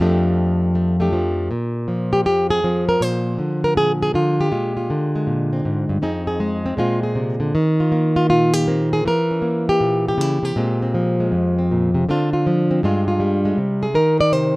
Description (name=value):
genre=solo jazz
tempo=159 BPM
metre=4/4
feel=swing 65% on 8ths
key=Bb mixolydian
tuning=A4 = 445 Hz
part: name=flamenco guitar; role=solo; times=0.0-14.6 s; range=F2 to D5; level=-16 LUFS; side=equal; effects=none
room=small room ambience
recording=rough home demo mix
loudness=-17 LUFS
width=side -21 dB against mid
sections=0.0-1.5 A section; 1.5-14.6 B section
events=nylon-string guitar solo 0.0-1.5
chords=0.0 F69; 1.5 Bb13; 6.0 Fm7; 6.8 Bb9; 7.5 Eb69; 9.0 Edim7; 10.5 Bbsus2; 12.1 Dm7; 12.8 G5; 13.6 Cm